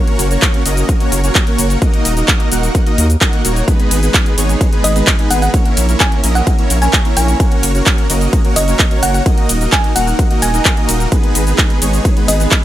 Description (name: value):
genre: EDM, festival progressive house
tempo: 129 BPM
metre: 4/4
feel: straight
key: G# minor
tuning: A4 = 440 Hz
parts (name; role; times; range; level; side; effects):
- dense compressed supersaw; riff; 0.0-12.6 s; G#3 to F#5; -18 LUFS; equal; sidechain pumping, digital delay
- big-room dance drum kit; drums; 0.1-12.6 s; cabasa, handclaps, hi-hat, ride cymbal; -17 LUFS; equal; none
- saturated sub bass; bass; 0.2-12.5 s; D#1 to D#2; -15 LUFS; equal; sidechain pumping
- electronic kick drum; drums; 0.4-12.6 s; none; -13 LUFS; equal; none
- thumb-piano-like synth pluck; melody; 4.8-12.4 s; D#5 to G#5; -20 LUFS; equal; chorus, digital delay
room: digital ambience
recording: none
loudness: -11 LUFS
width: side -13 dB against mid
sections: 0.0-12.6 A section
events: none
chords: 0.0 F#; 1.8 D#m; 3.7 G#m; 5.5 A#dim; 7.4 F#; 9.3 D#m; 11.1 G#m